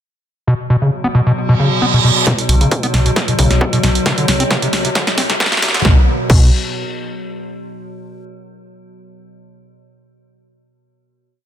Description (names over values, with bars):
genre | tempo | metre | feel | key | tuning
driving peak-time techno | 134 BPM | 4/4 | straight | unclear | A4 = 441 Hz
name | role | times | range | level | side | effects
overdriven acid bass | riff | 0.5-6.5 s | B2 to C4 | -16 LUFS | equal | cassette tape, sidechain pumping, ping-pong delay
metallic inharmonic drone | drone | 0.9-5.9 s | B2 to F#3 | -22 LUFS | left 1 dB | chorus, built-in reverb, sidechain pumping
reverse cymbal and riser | sound effects | 1.6-5.8 s | none | -21 LUFS | right 5 dB | none
electronic kick drum | drums | 2.3-6.4 s | none | -14 LUFS | equal | overdrive, high-pass filter on kick
punchy analog drum machine | drums | 2.3-6.4 s | crash cymbal, hi-hat, snare drum | -18 LUFS | right 1 dB | low-pass filter on snare, low-pass filter on hats, low-pass filter on cymbals
dark detuned saw bass | bass | 2.5-6.5 s | B1 to C2 | -17 LUFS | equal | sidechain pumping
room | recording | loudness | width
light reverb, digital ambience | dense, heavily limited modern master, high-pass filter | -12 LUFS | side -10 dB against mid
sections
0.5-2.3 intro; 2.3-5.8 build; 5.8-7.6 final chord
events
filter sweep on acid bass 0.5-2.3, 2.3-5.8; reverse cymbal 1.6-2.3; build-up 2.3-5.8; drum fill 2.3-5.8; filter sweep 2.3-5.8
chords
0.5 B5; 4.1 Bm; 5.8 N.C.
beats
| 0.48 0.92 1.37 1.82 | 2.27 2.71 3.16 3.61 | 4.06 4.50 4.95 5.40 | 5.85 6.30